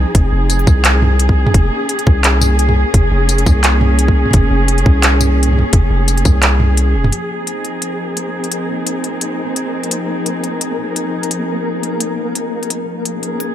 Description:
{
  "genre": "half-time drum and bass",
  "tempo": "172 BPM",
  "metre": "4/4",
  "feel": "swing 55% on 16ths, half-time",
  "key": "F minor",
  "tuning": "A4 = 440 Hz",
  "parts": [
    { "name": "dark studio cello section", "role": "sustained chords", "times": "0.0-13.5 s", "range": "F3 to Ab4", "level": "-19 LUFS", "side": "equal", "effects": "sidechain pumping, low-pass filter" },
    { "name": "long sustained 808-style bass", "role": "bass", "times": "0.0-7.1 s", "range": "Eb1 to C2", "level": "-13 LUFS", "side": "equal", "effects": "none" },
    { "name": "electronic kick drum", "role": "drums", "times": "0.1-6.3 s", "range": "none", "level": "-11 LUFS", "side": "equal", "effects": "overdrive" },
    { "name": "organic electronic drum kit", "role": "drums", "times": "0.1-13.5 s", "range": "handclaps, hi-hat, tambourine, toms", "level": "-17 LUFS", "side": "equal", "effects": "none" },
    { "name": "flickering grainy texture", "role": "texture", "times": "7.8-13.5 s", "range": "Bb3 to Bb4", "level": "-24 LUFS", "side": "left 1 dB", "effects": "built-in reverb" }
  ],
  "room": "digital ambience",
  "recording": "none",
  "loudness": "-12 LUFS",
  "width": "side -11 dB against mid",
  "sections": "0.0-7.1 A section; 7.1-13.5 B section",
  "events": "drop 0.0-7.1; kick drops out 6.8-7.1; filter sweep on cello section 7.1-13.5",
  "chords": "0.0 Fm7; 1.5 Bbm7/F; 7.1 Fm7; 12.7 Bbm7",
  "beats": "| 0.15 0.50 0.85 1.20 | 1.54 1.89 2.24 2.59 | 2.94 3.29 3.64 3.99 | 4.33 4.68 5.03 5.38 | 5.73 6.08 6.43 6.78 | 7.12 7.47 7.82 8.17 | 8.52 8.87 9.22 9.57 | 9.92 10.27 10.61 10.96 | 11.31 11.66 12.01 12.36 | 12.71 13.06 13.40"
}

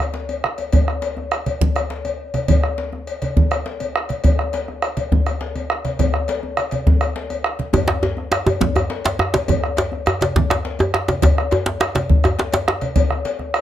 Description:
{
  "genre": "west african traditional, West African drum ensemble",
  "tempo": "137 BPM (dotted quarters)",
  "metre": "12/8",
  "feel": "straight",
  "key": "none",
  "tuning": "none",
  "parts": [
    { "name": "bombo", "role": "percussion", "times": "0.0-13.6 s", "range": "none", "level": "-20 LUFS", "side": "right 2 dB", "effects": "none" },
    { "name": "congas", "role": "percussion", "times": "0.0-13.5 s", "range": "none", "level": "-23 LUFS", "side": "right 4 dB", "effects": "none" },
    { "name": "cowbell", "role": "percussion", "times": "0.0-13.6 s", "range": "none", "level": "-26 LUFS", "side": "left 6 dB", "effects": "none" },
    { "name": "djembe", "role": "percussion", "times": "0.1-13.6 s", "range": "none", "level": "-23 LUFS", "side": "left 3 dB", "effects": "none" },
    { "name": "djembe", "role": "percussion", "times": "7.7-12.8 s", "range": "none", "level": "-20 LUFS", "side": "right 1 dB", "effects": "none" }
  ],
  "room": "light reverb",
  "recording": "close, detailed microphones",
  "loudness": "-17 LUFS",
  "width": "side -12 dB against mid",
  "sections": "0.0-7.7 A section; 7.7-13.6 B section",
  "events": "none",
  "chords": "none",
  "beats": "0.29 | 0.73 1.17 1.61 2.05 | 2.49 2.93 3.37 3.81 | 4.24 4.68 5.12 5.56 | 5.99 6.43 6.87 7.31 | 7.74 8.18 8.62 9.05 | 9.49 9.92 10.36 10.79 | 11.23 11.66 12.10 12.53 | 12.96 13.40"
}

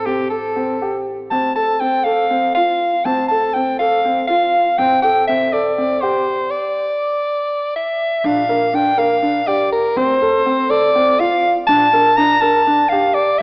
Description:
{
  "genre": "contemporary instrumental, chamber music in an uneven meter",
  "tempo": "243 BPM (eighths)",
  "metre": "7/8",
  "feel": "straight",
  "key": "D minor",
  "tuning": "A4 = 440 Hz",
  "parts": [
    { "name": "clear soprano saxophone", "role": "melody", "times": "0.0-13.4 s", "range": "G4 to Bb5", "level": "-15 LUFS", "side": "equal", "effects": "none" },
    { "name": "upright bass", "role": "bass", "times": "0.0-13.4 s", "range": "A1 to D2", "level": "-38 LUFS", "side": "equal", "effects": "none" },
    { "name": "dark concert grand piano", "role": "arpeggios", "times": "0.1-13.3 s", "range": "C4 to Bb4", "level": "-19 LUFS", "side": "equal", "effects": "none" }
  ],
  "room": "wet scoring stage reverb, RT60 2.0 s",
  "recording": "worn, warbling old tape, cassette tape, warbly pitch drift, AM radio sound",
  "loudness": "-14 LUFS",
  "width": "side -26 dB against mid",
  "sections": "0.0-8.2 A section; 8.2-13.4 B section",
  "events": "stop 6.5-8.2",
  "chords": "0.0 Am7; 1.3 Dm7; 4.8 Am7; 6.5 N.C.; 8.2 Bb; 10.0 Dm7; 11.7 Bbmaj7",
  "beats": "0.07 0.32 0.57 0.82 1.06 | 1.31 1.56 1.81 2.06 2.31 2.56 2.80 | 3.05 3.30 3.55 3.79 4.04 4.29 4.54 | 4.79 5.03 5.28 5.53 5.78 6.02 6.27 | 6.52 6.76 7.01 7.26 7.50 7.75 8.00 | 8.24 8.49 8.74 8.98 9.23 9.48 9.72 | 9.97 10.21 10.46 10.71 10.95 11.20 11.44 | 11.69 11.93 12.18 12.42 12.67 12.91 13.16 | 13.40"
}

